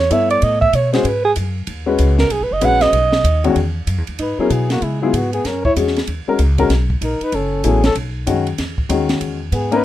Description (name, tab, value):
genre	jazz, small-group swing and bop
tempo	191 BPM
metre	4/4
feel	swing 63% on 8ths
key	unclear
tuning	A4 = 439 Hz
part	dark alto saxophone	second line	0.0-9.8 s	G#3 to F#5	-18 LUFS	right 4 dB	none
part	upright bass	bass	0.0-9.8 s	F#1 to C#3	-19 LUFS	equal	none
part	warm baby grand piano	accompaniment	0.1-9.8 s	E2 to C#5	-18 LUFS	left 5 dB	none
part	compact cocktail drum kit	drums	0.1-9.8 s	hi-hat, kick drum, ride cymbal, snare drum	-25 LUFS	right 1 dB	none
part	mellow flugelhorn	melody	4.2-9.8 s	E4 to C#5	-21 LUFS	left 4 dB	none
room	light reverb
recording	rough home demo mix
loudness	-14 LUFS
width	side -13 dB against mid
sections	0.0-3.6 A section; 3.6-9.8 B section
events	alto saxophone solo 0.0-3.6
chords	0.0 A9; 1.1 G#m7; 2.9 B; 3.6 E; 4.8 C#m7; 5.4 F#5; 6.1 Bmaj7; 7.3 F#m7; 8.0 B; 8.6 Emaj7